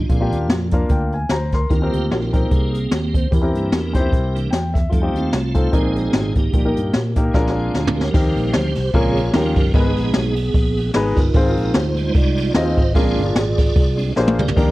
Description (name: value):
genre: uptempo gospel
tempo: 149 BPM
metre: 4/4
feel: swing 56% on 8ths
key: Eb major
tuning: A4 = 440 Hz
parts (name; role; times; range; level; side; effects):
- tonewheel organ; sustained chords; 0.0-14.7 s; Db3 to Eb5; -23 LUFS; right 3 dB; slow rotary speaker, chorus vibrato
- fingered electric bass; bass; 0.0-14.7 s; G1 to Bb2; -22 LUFS; equal; tube saturation
- warm grand piano; accompaniment; 0.1-14.7 s; Ab2 to C6; -22 LUFS; left 2 dB; none
- jazz brush drum kit; drums; 0.1-14.7 s; crash cymbal, hi-hat, kick drum, ride cymbal, snare drum, toms; -19 LUFS; equal; none
room: light reverb, small room ambience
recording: worn, warbling old tape, cassette tape, warbly pitch drift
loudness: -16 LUFS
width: side -18 dB against mid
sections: 0.0-8.1 A section; 8.1-14.7 B section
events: tonewheel organ solo 0.0-8.1, 8.1-14.7; grand piano fill 0.5-1.7, 4.3-4.9; drum fill 7.3-8.1, 14.2-14.6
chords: 0.1 Bb7; 3.3 C7/E; 4.9 F7; 5.7 Bb9sus4; 6.5 Eb/Bb; 7.3 Bb7; 8.1 Eb6; 8.9 Bbm7; 9.3 Eb9; 9.8 Abm; 11.4 Fm7/Ab; 13.0 Bb7